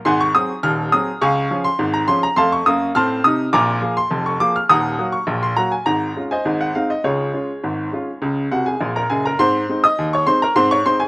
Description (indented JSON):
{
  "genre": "ragtime piano",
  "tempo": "103 BPM",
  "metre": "2/4",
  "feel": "straight",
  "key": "Db major",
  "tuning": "A4 = 440 Hz",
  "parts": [
    { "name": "bright upright piano", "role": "solo", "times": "0.1-11.1 s", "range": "Eb1 to F6", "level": "-16 LUFS", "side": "equal", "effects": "slapback echo" }
  ],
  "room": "little or no reverb",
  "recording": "recorded outdoors, with no room sound",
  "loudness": "-16 LUFS",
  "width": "side -25 dB against mid",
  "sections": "0.0-9.4 A section; 9.4-11.1 B section",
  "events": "upright piano fill 8.5-9.4",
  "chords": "0.1 Ab7; 1.2 Db; 2.4 F7; 3.5 Bb5; 4.7 Ebm; 5.9 Db/Ab; 6.4 Ab; 7.0 Db; 9.4 Ab",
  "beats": "| 0.06 0.64 | 1.22 1.79 | 2.37 2.96 | 3.54 4.12 | 4.70 5.28 | 5.86 6.45 | 7.03 7.62 | 8.21 8.80 | 9.39 9.97 | 10.55"
}